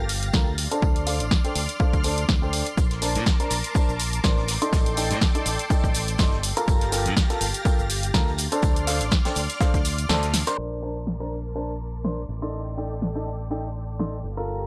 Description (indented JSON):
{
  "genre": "piano house",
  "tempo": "123 BPM",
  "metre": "4/4",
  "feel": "swing 55% on 16ths",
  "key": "Bb major",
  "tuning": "A4 = 440 Hz",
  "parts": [
    { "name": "analog string pad", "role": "sustained chords", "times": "0.0-14.7 s", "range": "G4 to Bb6", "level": "-36 LUFS", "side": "equal", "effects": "ensemble chorus, sidechain pumping" },
    { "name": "modern bright fingered electric bass", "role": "bass", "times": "0.0-14.7 s", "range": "G1 to Bb2", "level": "-31 LUFS", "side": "equal", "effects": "tube saturation, sidechain pumping, low-pass filter" },
    { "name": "punchy analog drum machine", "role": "drums", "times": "0.1-14.6 s", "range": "hi-hat, shaker, snare drum", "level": "-30 LUFS", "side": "equal", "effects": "overdrive, low-pass filter on cymbals, low-pass filter on hats, low-pass filter on snare, low-pass filter on perc" },
    { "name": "tambourine", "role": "percussion", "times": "0.1-14.7 s", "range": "none", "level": "-43 LUFS", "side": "equal", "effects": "none" },
    { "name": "bright upright piano", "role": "riff", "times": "0.3-14.7 s", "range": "D4 to C6", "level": "-31 LUFS", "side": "equal", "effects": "sidechain pumping, low-pass filter, tape echo" },
    { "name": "electronic kick drum", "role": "drums", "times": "0.3-9.8 s", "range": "none", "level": "-24 LUFS", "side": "equal", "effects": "overdrive" },
    { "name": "vintage brush drum kit", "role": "drums", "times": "2.8-10.6 s", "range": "hi-hat, snare drum, tambourine", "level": "-40 LUFS", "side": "equal", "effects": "none" }
  ],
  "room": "small room ambience",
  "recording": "cassette tape, low-pass filter",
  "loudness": "-24 LUFS",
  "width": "mono",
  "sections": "0.0-10.6 A section; 10.6-14.7 B section",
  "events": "kick drops out 10.1-10.6; drum fill 10.3; filter sweep on drum 10.6-14.7; filter sweep 10.6-14.7",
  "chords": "0.0 Gm9; 0.6 Dm7; 2.8 Bbmaj9; 4.5 Cm69; 6.4 Gm9; 8.4 Dm7; 10.6 Bbmaj9; 12.3 Cm69/A",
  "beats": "0.34 | 0.82 1.31 1.80 2.29 | 2.77 3.26 3.75 4.24 | 4.73 5.21 5.70 6.19 | 6.68 7.17 7.65 8.14 | 8.63 9.12 9.60 10.09 | 10.58 11.07 11.56 12.04 | 12.53 13.02 13.51 13.99 | 14.48"
}